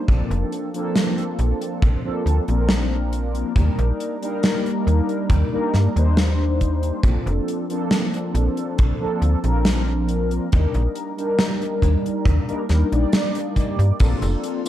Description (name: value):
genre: vaporwave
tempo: 69 BPM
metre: 4/4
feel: straight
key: Bb major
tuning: A4 = 441 Hz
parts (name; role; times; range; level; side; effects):
- mellow synth brass; accompaniment; 0.0-14.7 s; F3 to D5; -23 LUFS; equal; lush chorus, cassette tape, analog delay
- slap-like FM bass; bass; 0.1-14.4 s; F1 to G2; -19 LUFS; equal; none
- gated 80s drum kit; drums; 0.1-14.7 s; crash cymbal, hi-hat, snare drum, tambourine; -23 LUFS; equal; none
- kick drum; drums; 0.1-14.2 s; none; -20 LUFS; equal; none
room: light reverb, small room ambience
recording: dark, warm production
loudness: -18 LUFS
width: side -12 dB against mid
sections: 0.0-14.0 A section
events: none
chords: 0.1 Bbmaj9; 3.6 Ebmaj7; 7.0 Bbmaj9; 10.5 Ebmaj7; 14.0 Bbmaj9